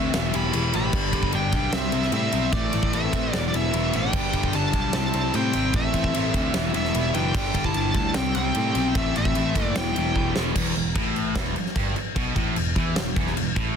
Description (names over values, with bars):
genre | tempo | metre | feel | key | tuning
hard rock | 150 BPM | 4/4 | straight | E minor | A4 = 440 Hz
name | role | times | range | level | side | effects
nasal lead guitar with a parked wah | melody | 0.0-10.3 s | D5 to B5 | -29 LUFS | equal | overdrive, tape echo
smooth overdriven lead guitar | second line | 0.0-10.3 s | A3 to G4 | -31 LUFS | equal | tape echo
crunchy overdriven guitar | riff | 0.0-13.8 s | E2 to C4 | -29 LUFS | left 11 dB | phaser
high-gain distorted guitar | riff | 0.0-13.8 s | E2 to C4 | -31 LUFS | right 14 dB | distortion
sludgy distorted guitar | riff | 0.0-13.8 s | E2 to E4 | -33 LUFS | right 1 dB | overdrive
picked electric bass | bass | 0.0-13.8 s | E1 to A2 | -28 LUFS | right 1 dB | none
huge arena drum kit | drums | 0.1-13.7 s | crash cymbal, kick drum, ride cymbal, snare drum | -26 LUFS | equal | none
room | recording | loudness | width
light reverb, small room ambience | dense, heavily limited modern master | -21 LUFS | side -7 dB against mid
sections
0.0-10.6 A section; 10.6-13.8 B section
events
drum fill 10.2-10.6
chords
0.1 Em; 0.9 G; 1.7 C; 2.5 Am; 3.3 Em; 4.1 G; 4.9 C; 5.7 Am; 6.5 Em; 7.3 G; 8.1 C; 8.9 Am; 9.8 Em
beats
0.14 0.54 | 0.94 1.33 1.74 2.13 | 2.54 2.94 3.34 3.74 | 4.14 4.54 4.94 5.34 | 5.74 6.14 6.54 6.94 | 7.34 7.74 8.14 8.55 | 8.95 9.35 9.75 10.15 | 10.55 10.96 11.36 11.76 | 12.16 12.56 12.96 13.36